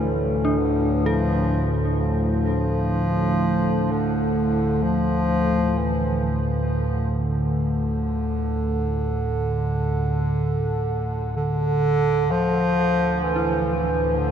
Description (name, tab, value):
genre	ambient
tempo	free time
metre	none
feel	none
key	D minor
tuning	A4 = 440 Hz
part	warm bass clarinet	melody	0.0-14.3 s	D3 to F3	-23 LUFS	right 1 dB	diffuse ambient delay
part	dark detuned synth bell	arpeggios	0.0-14.3 s	D4 to A4	-29 LUFS	equal	chorus, tremolo, diffuse ambient delay
part	analog drone	drone	0.0-14.3 s	D2 to A2	-23 LUFS	equal	chorus
part	deep dark ambient pad	sustained chords	12.9-14.3 s	D4 to A4	-37 LUFS	right 7 dB	none
room	wet huge ambient reverb, RT60 8.7 s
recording	in a vast, echoing space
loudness	-20 LUFS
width	side -8 dB against mid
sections	0.0-12.3 A section; 12.3-14.3 A section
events	none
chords	0.0 Dm